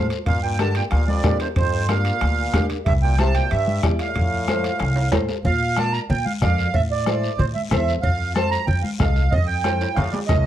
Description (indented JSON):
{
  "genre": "latin, cumbia",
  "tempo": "186 BPM",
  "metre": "4/4",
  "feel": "straight",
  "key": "F major",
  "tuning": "A4 = 445 Hz",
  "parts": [
    { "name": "accordion", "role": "melody", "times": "0.0-10.5 s", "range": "C5 to Bb5", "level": "-24 LUFS", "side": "right 5 dB", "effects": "light tremolo tuning, plate reverb" },
    { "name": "nylon-string guitar", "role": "accompaniment", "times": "0.0-10.5 s", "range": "D4 to Eb5", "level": "-27 LUFS", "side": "left 2 dB", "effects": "plate reverb" },
    { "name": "upright bass", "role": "bass", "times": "0.0-10.5 s", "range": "C2 to Bb2", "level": "-22 LUFS", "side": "equal", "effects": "none" },
    { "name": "guiro", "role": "percussion", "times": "0.1-10.5 s", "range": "none", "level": "-38 LUFS", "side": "left 7 dB", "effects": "none" },
    { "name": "timbales and cowbell", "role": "percussion", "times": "0.1-10.5 s", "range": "none", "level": "-32 LUFS", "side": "right 6 dB", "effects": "none" },
    { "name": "growling trombone", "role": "second line", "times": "0.3-5.1, 10.0-10.5 s", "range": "E2 to D3", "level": "-30 LUFS", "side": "left 4 dB", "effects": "plate reverb" },
    { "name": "bombo", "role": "percussion", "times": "0.3-10.5 s", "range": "none", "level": "-24 LUFS", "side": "left 1 dB", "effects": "none" },
    { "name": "congas", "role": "percussion", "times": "0.6-10.5 s", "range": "none", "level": "-28 LUFS", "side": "left 1 dB", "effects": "none" }
  ],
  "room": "moderate studio reverb, RT60 0.6 s",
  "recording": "vinyl crackle",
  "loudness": "-18 LUFS",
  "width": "side -11 dB against mid",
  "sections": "0.0-5.5 A section; 5.5-10.5 B section",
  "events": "drum fill 5.0-5.5, 9.6-10.5",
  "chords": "0.3 Gm7; 2.9 C; 4.2 F; 5.5 Bb; 6.7 Am; 8.0 F7"
}